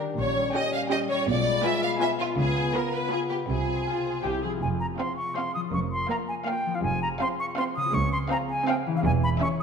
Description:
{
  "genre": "cinematic, playful, whimsical film cue",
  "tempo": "163 BPM",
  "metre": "3/4",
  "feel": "straight",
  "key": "F minor",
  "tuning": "A4 = 439 Hz",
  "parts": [
    { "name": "rich studio violin section", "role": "melody", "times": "0.0-9.6 s", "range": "E5 to Cb6", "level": "-36 LUFS", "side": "left 2 dB", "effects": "none" },
    { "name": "warm studio viola section", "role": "accompaniment", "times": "0.0-9.6 s", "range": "Bb3 to Ab4", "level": "-33 LUFS", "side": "right 2 dB", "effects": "none" },
    { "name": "dark French horn section", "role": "sustained chords", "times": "0.0-4.4 s", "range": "G3 to F4", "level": "-31 LUFS", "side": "left 3 dB", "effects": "none" },
    { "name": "concert harp", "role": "arpeggios", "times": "0.0-9.6 s", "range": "Bb2 to D5", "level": "-32 LUFS", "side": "left 6 dB", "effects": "none" },
    { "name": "bright studio violin section", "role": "second line", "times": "0.2-9.6 s", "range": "F4 to F5", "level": "-30 LUFS", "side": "equal", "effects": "none" },
    { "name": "dark studio double bass section", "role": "bass", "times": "0.2-9.3 s", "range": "E1 to Db2", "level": "-31 LUFS", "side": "right 4 dB", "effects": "none" },
    { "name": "rich studio cello section", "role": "bass", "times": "0.2-9.3 s", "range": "Db2 to Db3", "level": "-32 LUFS", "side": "right 3 dB", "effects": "none" },
    { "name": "silver concert flute", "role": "second line", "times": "4.6-9.6 s", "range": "F5 to Eb6", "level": "-28 LUFS", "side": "equal", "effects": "none" }
  ],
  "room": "moderate scoring stage reverb, RT60 1.9 s",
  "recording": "minimal, uncompressed stereo recording",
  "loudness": "-24 LUFS",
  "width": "side -6 dB against mid",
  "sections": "0.0-4.6 A section; 4.6-9.6 B section",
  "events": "none",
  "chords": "0.2 Gdim/Bb; 1.3 Bdim7; 2.4 Db7; 3.5 Fm/C; 4.2 C; 4.6 Fm; 5.7 Bbm/F; 6.8 Fm; 8.0 Dbmaj7; 9.0 C#m/E"
}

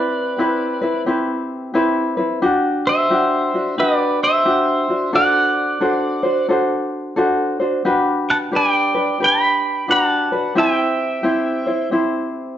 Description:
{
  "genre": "Hawaiian",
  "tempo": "88 BPM",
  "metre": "4/4",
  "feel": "swing 64% on 8ths",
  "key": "G major",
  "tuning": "A4 = 440 Hz",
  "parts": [
    { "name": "pedal steel guitar", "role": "melody", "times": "0.0-11.9 s", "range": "B4 to B5", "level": "-17 LUFS", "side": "right 1 dB", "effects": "none" },
    { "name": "tenor ukulele", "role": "accompaniment", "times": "0.0-12.6 s", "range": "C4 to C5", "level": "-18 LUFS", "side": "left 1 dB", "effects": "none" }
  ],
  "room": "wet large studio reverb, RT60 1.2 s",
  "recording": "band playing live in one room, nothing above 7.9 kHz",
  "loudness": "-16 LUFS",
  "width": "side -10 dB against mid",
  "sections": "0.0-12.6 A section",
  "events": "none",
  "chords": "0.0 Cmaj7; 2.4 Gmaj7(no3); 5.1 D7; 7.8 Gmaj7; 10.6 C"
}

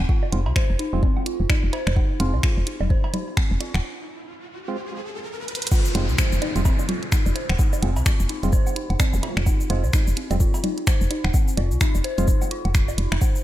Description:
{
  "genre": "minimal techno",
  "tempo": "128 BPM",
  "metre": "4/4",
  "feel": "swing 59% on 16ths",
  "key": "F minor",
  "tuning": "A4 = 440 Hz",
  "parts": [
    { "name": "woody FM bass", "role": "bass", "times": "0.0-13.2 s", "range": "Eb1 to C2", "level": "-23 LUFS", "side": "equal", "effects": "tube saturation, sidechain pumping" },
    { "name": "dark detuned synth bell", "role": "riff", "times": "0.1-13.3 s", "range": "C4 to C5", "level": "-30 LUFS", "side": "equal", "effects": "chorus, phaser, sidechain pumping, analog delay" },
    { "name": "electronic kick drum", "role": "drums", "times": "0.1-13.3 s", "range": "none", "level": "-20 LUFS", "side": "equal", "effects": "small room ambience" },
    { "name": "woodblock, bongos, cowbell and congas", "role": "percussion", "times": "0.1-13.3 s", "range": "none", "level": "-33 LUFS", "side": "right 2 dB", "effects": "small room ambience, analog delay" },
    { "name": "percussive organ stab", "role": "stabs", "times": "0.3-12.3 s", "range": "Ab3 to F4", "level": "-33 LUFS", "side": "right 4 dB", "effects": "chorus, analog delay" },
    { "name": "garage drum kit", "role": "drums", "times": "0.3-13.4 s", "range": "cabasa, crash cymbal, finger snaps, hi-hat", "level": "-29 LUFS", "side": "equal", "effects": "overdrive, small room ambience" },
    { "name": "riser, downlifter and zap", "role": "sound effects", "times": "3.3-9.5 s", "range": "none", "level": "-34 LUFS", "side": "left 1 dB", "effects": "none" }
  ],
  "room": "digital ambience",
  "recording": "none",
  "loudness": "-19 LUFS",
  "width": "side -14 dB against mid",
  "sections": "0.0-5.7 A section; 5.7-13.4 B section",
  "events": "filter sweep on synth stab 0.0-5.7; riser 3.3-5.7; break 3.8-5.7; drum fill 5.5; drop 5.7-13.4",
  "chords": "0.0 Fm"
}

